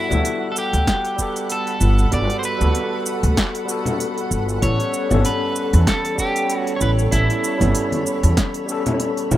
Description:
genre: sunset chillout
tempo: 96 BPM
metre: 4/4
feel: swing 56% on 16ths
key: unclear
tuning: A4 = 440 Hz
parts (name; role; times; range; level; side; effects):
- electric guitar at the edge of break-up; melody; 0.0-8.0 s; E4 to D5; -25 LUFS; equal; spring reverb, ping-pong delay
- overdriven tine electric piano; accompaniment; 0.0-9.4 s; G3 to F#5; -24 LUFS; moving between left 6 dB and right 5 dB; auto-pan, digital delay
- shimmering ambient pad; sustained chords; 0.0-9.4 s; A4 to B5; -28 LUFS; right 1 dB; chorus, built-in reverb
- upright bass; bass; 0.1-9.4 s; G1 to E2; -17 LUFS; equal; none
- deep house drum kit; drums; 0.1-9.4 s; hi-hat, shaker, snare drum; -25 LUFS; right 1 dB; none
- congas; percussion; 0.1-9.4 s; none; -24 LUFS; left 1 dB; none
- electronic kick drum; drums; 0.9-9.4 s; none; -24 LUFS; equal; none
room: light reverb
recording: rough home demo mix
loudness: -17 LUFS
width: side -13 dB against mid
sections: 0.0-9.4 A section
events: none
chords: 0.0 Gmaj9; 4.6 A9

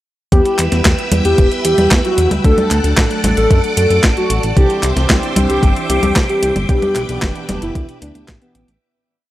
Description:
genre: italo disco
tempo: 113 BPM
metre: 4/4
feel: straight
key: E minor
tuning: A4 = 441 Hz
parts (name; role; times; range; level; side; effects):
- soft octave-layered synth lead; melody; 0.3-8.7 s; B3 to A4; -17 LUFS; left 1 dB; chorus, cassette tape, tape echo, shimmer reverb
- phased string machine; sustained chords; 0.3-8.8 s; A4 to E6; -23 LUFS; equal; ensemble chorus, phaser, shimmer reverb
- mellow synth brass; stabs; 0.3-8.7 s; B2 to B4; -23 LUFS; right 2 dB; chorus, shimmer reverb
- chorused synth bass; bass; 0.3-8.8 s; E1 to F#2; -18 LUFS; equal; tube saturation
- clean 12-bit digital drum machine; drums; 0.3-8.8 s; congas, handclaps, hi-hat, snare drum; -18 LUFS; equal; overdrive, small room reverb
- electronic kick drum; drums; 0.3-8.4 s; none; -14 LUFS; equal; overdrive, small room reverb
room: light reverb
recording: dry, gritty hardware recording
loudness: -12 LUFS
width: side -15 dB against mid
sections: 0.3-8.8 chorus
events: fade-out 6.0-8.8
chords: 0.3 Em; 2.4 D; 4.6 Cadd9; 6.7 G6

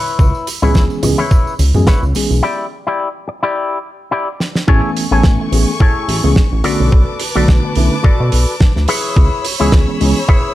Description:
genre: nu-disco, nu disco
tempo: 107 BPM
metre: 4/4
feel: swing 55% on 16ths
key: A major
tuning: A4 = 440 Hz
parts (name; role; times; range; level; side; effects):
- electric guitar with an envelope filter; riff; 0.0-10.5 s; E4 to D5; -19 LUFS; left 3 dB; wide subtle chorus, slapback echo
- tambourine and congas; percussion; 0.1-2.4 s; none; -25 LUFS; right 2 dB; none
- chorused synth bass; bass; 0.2-10.1 s; A1 to B2; -14 LUFS; equal; none
- electronic kick drum; drums; 0.2-10.4 s; none; -11 LUFS; equal; small room ambience
- damped 70s drum kit; drums; 0.5-10.1 s; hi-hat, snare drum; -20 LUFS; right 2 dB; small room ambience
- tine electric piano; accompaniment; 0.6-10.2 s; D3 to G#5; -19 LUFS; equal; overdrive, fast stereo tremolo, sidechain pumping, slapback echo
- rich chamber string section; sustained chords; 4.7-10.5 s; A3 to E6; -25 LUFS; left 2 dB; sidechain pumping
room: studio ambience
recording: none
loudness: -12 LUFS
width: side -15 dB against mid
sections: 0.0-4.7 A section; 4.7-10.5 B section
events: break 2.4-4.7; drum fill 4.4; drop 4.7-10.5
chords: 0.0 C#m7; 2.4 Em7; 4.7 Amaj7; 6.6 Bm7; 8.9 C#m7

